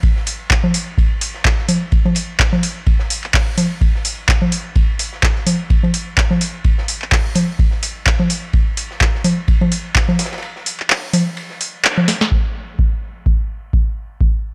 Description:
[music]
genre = house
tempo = 127 BPM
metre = 4/4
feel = swing 56% on 16ths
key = none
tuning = none
[part]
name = electronic kick drum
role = drums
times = 0.0-14.3 s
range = none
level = -18 LUFS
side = equal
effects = studio reverb
[part]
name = open jazz drum kit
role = drums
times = 0.0-12.2 s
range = hi-hat, ride cymbal, snare drum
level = -33 LUFS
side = equal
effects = high-pass filter on cymbals, studio reverb, high-pass filter on hats, high-pass filter on snare, high-pass filter on room
[part]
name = booming analog drum machine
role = drums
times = 0.3-12.3 s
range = congas, handclaps, hi-hat, snare drum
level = -19 LUFS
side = equal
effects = low-pass filter on hats, studio reverb, low-pass filter on perc, low-pass filter on snare, low-pass filter on cymbals
[sound]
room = small room ambience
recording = none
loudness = -17 LUFS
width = mono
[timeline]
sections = 0.0-12.3 A section; 12.3-14.5 B section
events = drop 0.0-12.3; kick drops out 10.4-12.3; band accent 11.8; drum fill 12.1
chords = none

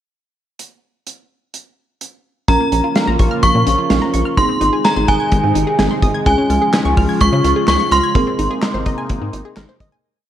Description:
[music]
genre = synth-pop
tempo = 127 BPM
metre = 4/4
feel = straight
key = unclear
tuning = A4 = 438 Hz
[part]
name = modern studio drum kit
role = drums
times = 0.6-9.9 s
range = handclaps, hi-hat, kick drum, snare drum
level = -18 LUFS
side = equal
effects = gated reverb
[part]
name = synth chime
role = melody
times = 2.5-9.8 s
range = Ab5 to Db6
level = -18 LUFS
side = right 1 dB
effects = ensemble chorus, tape echo
[part]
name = muted felt-like synth keys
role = accompaniment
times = 2.5-10.0 s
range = C4 to Bb4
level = -22 LUFS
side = right 1 dB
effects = chorus
[part]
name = phased analog pad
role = sustained chords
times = 2.5-10.0 s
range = C3 to F4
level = -22 LUFS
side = equal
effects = phaser, chorus
[part]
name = wide unison pluck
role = arpeggios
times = 2.5-10.0 s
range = F3 to Ab6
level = -24 LUFS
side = left 2 dB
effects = tape echo
[part]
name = rubbery square bass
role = bass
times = 2.5-9.9 s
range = Ab1 to Db3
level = -19 LUFS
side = equal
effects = none
[sound]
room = light reverb, studio reverb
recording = none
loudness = -13 LUFS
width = side -11 dB against mid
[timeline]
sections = 0.6-2.5 pickup bar; 2.5-10.0 pre-chorus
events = fade-out 8.2-10.0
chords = 0.6 N.C.; 2.5 Bbm; 4.4 Ab; 6.3 Db; 8.2 Abadd9

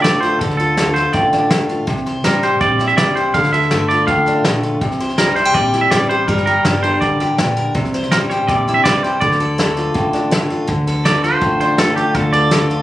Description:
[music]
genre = honky-tonk and classic country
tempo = 164 BPM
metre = 4/4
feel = straight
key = D minor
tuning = A4 = 441 Hz
[part]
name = twangy electric guitar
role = second line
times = 0.0-12.8 s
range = G4 to F5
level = -17 LUFS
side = right 2 dB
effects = tape echo
[part]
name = picked steel-string acoustic guitar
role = accompaniment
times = 0.0-12.8 s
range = A2 to C5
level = -17 LUFS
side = left 1 dB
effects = none
[part]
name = upright bass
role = bass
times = 0.0-12.8 s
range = G1 to D2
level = -24 LUFS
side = equal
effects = none
[part]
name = soft brush drum kit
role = drums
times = 0.0-12.7 s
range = hi-hat, kick drum, snare drum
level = -20 LUFS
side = equal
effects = none
[sound]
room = moderate studio reverb, RT60 0.5 s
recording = recorded on a phone in the room, studio ambience, compression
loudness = -13 LUFS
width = side -14 dB against mid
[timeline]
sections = 0.0-10.7 A section; 10.7-12.8 B section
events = clean electric guitar solo 0.0-10.7, 10.7-12.8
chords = 0.0 Dm; 1.9 C; 3.3 Dm; 4.8 C; 6.3 Gm; 7.7 C; 9.2 Dm

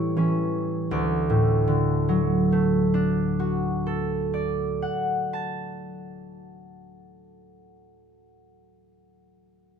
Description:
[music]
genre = classical, solo harp piece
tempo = 41 BPM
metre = 4/4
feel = rubato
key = D major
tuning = A4 = 440 Hz
[part]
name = concert harp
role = solo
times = 0.0-8.2 s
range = D2 to A5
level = -22 LUFS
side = equal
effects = none
[sound]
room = light reverb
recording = minimal, uncompressed stereo recording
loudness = -22 LUFS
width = side -7 dB against mid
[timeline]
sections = 0.9-6.7 A section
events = none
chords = 0.0 A7; 0.9 D

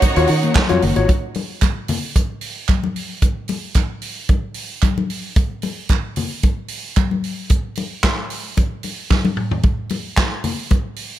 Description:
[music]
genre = disco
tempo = 112 BPM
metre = 4/4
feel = straight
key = unclear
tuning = A4 = 440 Hz
[part]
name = clear symphonic string section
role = second line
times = 0.0-1.0 s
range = Eb4 to Gb5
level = -23 LUFS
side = right 4 dB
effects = none
[part]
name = rich symphonic string section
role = sustained chords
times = 0.0-1.0 s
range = Eb3 to Gb4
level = -28 LUFS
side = right 2 dB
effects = none
[part]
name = vintage drum kit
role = drums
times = 0.0-11.1 s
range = handclaps, hi-hat, kick drum, snare drum, toms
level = -19 LUFS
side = right 1 dB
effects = none
[part]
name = congas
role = percussion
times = 0.0-10.8 s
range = none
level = -24 LUFS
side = left 5 dB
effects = none
[part]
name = overdriven tine electric piano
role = accompaniment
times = 0.2-1.1 s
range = Eb3 to Db5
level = -20 LUFS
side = left 6 dB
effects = none
[part]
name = fingered electric bass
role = bass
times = 0.2-1.1 s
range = Gb1 to Eb3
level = -18 LUFS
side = right 1 dB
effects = none
[part]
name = group handclap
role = percussion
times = 0.5-10.3 s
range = none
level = -28 LUFS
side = right 14 dB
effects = none
[sound]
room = studio reverb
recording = none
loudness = -17 LUFS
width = side -13 dB against mid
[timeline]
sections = 0.0-1.1 A section; 1.1-11.2 B section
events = drum fill 9.1-9.6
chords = 0.0 Ebm7; 1.1 N.C.

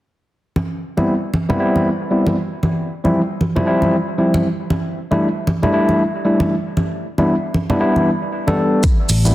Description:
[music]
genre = deep house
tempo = 116 BPM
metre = 4/4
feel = swing 60% on 16ths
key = unclear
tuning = A4 = 440 Hz
[part]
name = congas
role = percussion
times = 0.6-9.3 s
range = none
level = -21 LUFS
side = right 1 dB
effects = none
[part]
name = overdriven tine electric piano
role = stabs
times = 1.0-9.3 s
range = F3 to A4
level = -17 LUFS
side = equal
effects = vintage 12-bit sampler grit, sidechain pumping, low-pass filter, tape echo
[part]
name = electronic kick drum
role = drums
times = 8.8-9.0 s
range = none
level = -14 LUFS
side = equal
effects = none
[part]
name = maracas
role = percussion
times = 8.8-9.3 s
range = none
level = -24 LUFS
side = right 1 dB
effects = none
[part]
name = fingered electric bass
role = bass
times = 9.1-9.3 s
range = A1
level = -13 LUFS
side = equal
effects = tube saturation, sidechain pumping
[part]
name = electronic hi-hat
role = drums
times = 9.1-9.2 s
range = none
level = -24 LUFS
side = right 2 dB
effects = low-pass filter on hats
[sound]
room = moderate digital room reverb, RT60 1.1 s, studio ambience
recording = dense, heavily limited modern master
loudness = -15 LUFS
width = side -15 dB against mid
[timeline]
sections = 0.6-9.3 A section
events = none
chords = 0.6 Gadd11; 2.4 Cadd11/F; 4.7 Gsus2; 6.8 Em7; 8.8 Am7

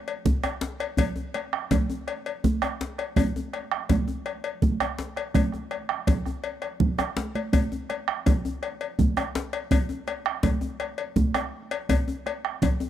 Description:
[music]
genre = west african traditional, West African drum ensemble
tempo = 110 BPM (dotted quarters)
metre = 12/8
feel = straight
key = none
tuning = none
[part]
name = cowbell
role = percussion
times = 0.1-12.8 s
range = none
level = -32 LUFS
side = left 8 dB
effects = none
[part]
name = bombo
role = percussion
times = 0.3-12.8 s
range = none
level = -27 LUFS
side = right 2 dB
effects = none
[part]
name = congas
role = percussion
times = 0.3-12.8 s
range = none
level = -28 LUFS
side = right 5 dB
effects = none
[part]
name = djembe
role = percussion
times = 0.3-12.9 s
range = none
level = -28 LUFS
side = left 2 dB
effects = none
[sound]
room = small room ambience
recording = dry, close 1970s-style studio recording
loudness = -24 LUFS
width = side -11 dB against mid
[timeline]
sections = 0.0-12.9 A section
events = drum fill 7.0-7.5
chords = none

